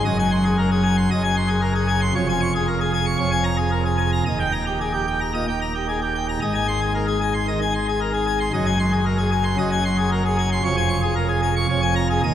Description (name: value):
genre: classical, organ toccata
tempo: 114 BPM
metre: 4/4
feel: straight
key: Ab major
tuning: A4 = 442 Hz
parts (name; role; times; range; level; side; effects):
- pipe organ, plenum; solo; 0.0-12.3 s; Eb1 to Db6; -18 LUFS; equal; none
room: wet church reverb, RT60 3.4 s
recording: none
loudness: -19 LUFS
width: side -10 dB against mid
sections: 0.0-12.3 A section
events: none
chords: 0.0 Ab7/Gb; 2.1 Bbm7/F; 4.3 Eb; 6.4 Ab; 8.5 Ab7/Gb; 10.6 Bbm7/F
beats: | 0.05 0.57 1.10 1.62 | 2.14 2.67 3.19 3.72 | 4.25 4.80 5.33 5.87 | 6.40 6.94 7.47 8.00 | 8.53 9.05 9.58 10.11 | 10.63 11.15 11.68 12.21